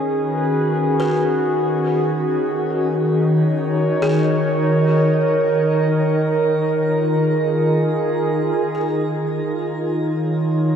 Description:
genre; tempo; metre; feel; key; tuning
ambient; free time; none; none; Eb minor; A4 = 441 Hz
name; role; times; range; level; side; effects
warbly tape-like pad; sustained chords; 0.0-10.8 s; Eb3 to C#5; -17 LUFS; equal; chorus, built-in reverb, shimmer reverb
buzzing kalimba; arpeggios; 1.0-10.0 s; Ab4 to Cb5; -30 LUFS; left 1 dB; diffuse ambient delay, shimmer reverb
organ-like drone; drone; 2.9-8.8 s; D#3 to D#4; -23 LUFS; equal; ensemble chorus, built-in reverb
room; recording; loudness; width
wet lush hall reverb, RT60 2.7 s; dark, warm production; -16 LUFS; side -8 dB against mid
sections
0.0-8.7 A section; 8.7-10.8 B section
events
fade-in on kalimba 0.0-8.7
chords
0.0 Db7sus4/Eb; 1.9 Bmaj9/D# (rootless); 5.3 Bb7sus4/Eb

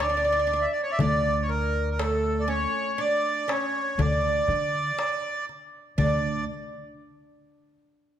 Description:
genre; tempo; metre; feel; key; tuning
Arabic maqam ensemble; 120 BPM (eighths); 10/8; straight; unclear; A4 = 441 Hz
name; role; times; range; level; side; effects
accordion; melody; 0.0-6.4 s; A4 to E5; -27 LUFS; equal; none
oud; second line; 0.0-6.4 s; A3 to D4; -28 LUFS; right 1 dB; none
upright bass; bass; 0.0-6.4 s; D2 to D3; -29 LUFS; equal; none
darbuka; percussion; 0.0-6.4 s; none; -30 LUFS; left 2 dB; none
room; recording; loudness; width
moderate recital hall reverb, RT60 1.8 s; none; -23 LUFS; side -10 dB against mid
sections
0.0-6.0 A section; 6.0-8.2 B section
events
none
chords
none

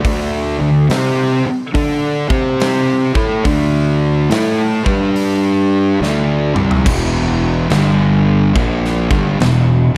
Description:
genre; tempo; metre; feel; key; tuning
stoner and doom metal; 71 BPM; 4/4; swing 65% on 8ths; unclear; A4 = 440 Hz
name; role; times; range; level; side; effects
thick fuzz guitar; riff; 0.0-10.0 s; E2 to D5; -17 LUFS; equal; distortion
fuzz fingered electric bass; bass; 0.0-9.9 s; E1 to D3; -20 LUFS; equal; overdrive
big rock drum kit; drums; 0.0-9.7 s; crash cymbal, hi-hat, kick drum, snare drum, toms; -22 LUFS; equal; none
room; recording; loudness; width
small room ambience; dark, warm production; -15 LUFS; mono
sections
0.0-6.9 A section; 6.9-10.0 B section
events
drum fill 6.0-6.9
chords
0.1 D5; 2.2 C5; 3.0 D5; 4.7 G5; 6.0 D5; 6.9 E5; 7.7 G5; 8.6 Em

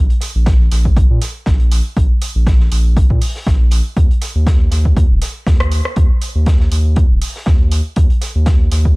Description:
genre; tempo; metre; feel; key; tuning
acid house; 120 BPM; 4/4; swing 55% on 16ths; unclear; A4 = 435 Hz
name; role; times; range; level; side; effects
saturated sub bass; bass; 0.0-9.0 s; Eb1 to Bb2; -14 LUFS; equal; tube saturation, sidechain pumping
crunchy breakbeat drum kit; drums; 0.1-8.8 s; hi-hat, snare drum; -32 LUFS; equal; sidechain pumping on hats, high-pass filter on hats, high-pass filter on snare, high-pass filter on room
punchy analog drum machine; drums; 0.2-8.8 s; hi-hat, rim click; -25 LUFS; right 2 dB; none
electronic kick drum; drums; 0.5-8.9 s; none; -13 LUFS; equal; none
room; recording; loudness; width
little or no reverb; dark, warm production; -11 LUFS; side -26 dB against mid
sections
0.0-9.0 A section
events
none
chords
none

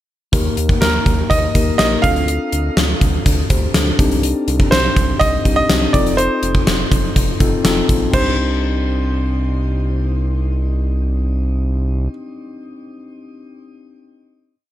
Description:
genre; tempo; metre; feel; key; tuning
1980s-style pop; 123 BPM; 4/4; straight; C dorian; A4 = 440 Hz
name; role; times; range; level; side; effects
mellow tine electric piano; accompaniment; 0.3-14.6 s; Bb3 to C5; -22 LUFS; left 3 dB; shimmer reverb
round analog bass; bass; 0.3-12.1 s; F1 to Eb2; -19 LUFS; equal; none
gated 80s drum kit; drums; 0.3-8.2 s; crash cymbal, hi-hat, kick drum, snare drum; -16 LUFS; equal; gated reverb
bright grand piano; melody; 0.8-12.1 s; Bb4 to F5; -20 LUFS; right 2 dB; shimmer reverb, tape echo
room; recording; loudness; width
light reverb, studio ambience; none; -14 LUFS; side -13 dB against mid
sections
0.3-8.1 verse; 8.1-12.0 final chord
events
none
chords
0.3 Eb; 2.0 Dm7; 4.0 Cmadd9; 5.9 F7; 8.1 Cmadd9

